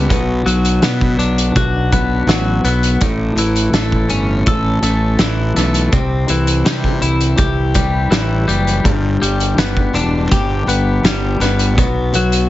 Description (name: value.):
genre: quiet-loud alternative rock.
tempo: 82 BPM.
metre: 4/4.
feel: straight.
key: unclear.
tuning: A4 = 440 Hz.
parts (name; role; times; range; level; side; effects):
twelve-string electric guitar; arpeggios; 0.0-12.5 s; G2 to A4; -17 LUFS; left 2 dB; none.
fuzz fingered electric bass; bass; 0.0-12.5 s; E1 to C3; -17 LUFS; right 1 dB; overdrive.
loose indie drum kit; drums; 0.1-12.5 s; hi-hat, kick drum, snare drum; -18 LUFS; equal; none.
room: light reverb.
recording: heavily compressed radio sound, multiband compression, nothing above 7.6 kHz.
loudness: -13 LUFS.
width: side -15 dB against mid.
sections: 0.0-12.5 A section.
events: none.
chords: 0.1 Bm; 3.0 A; 5.9 C; 8.9 G; 11.8 B5.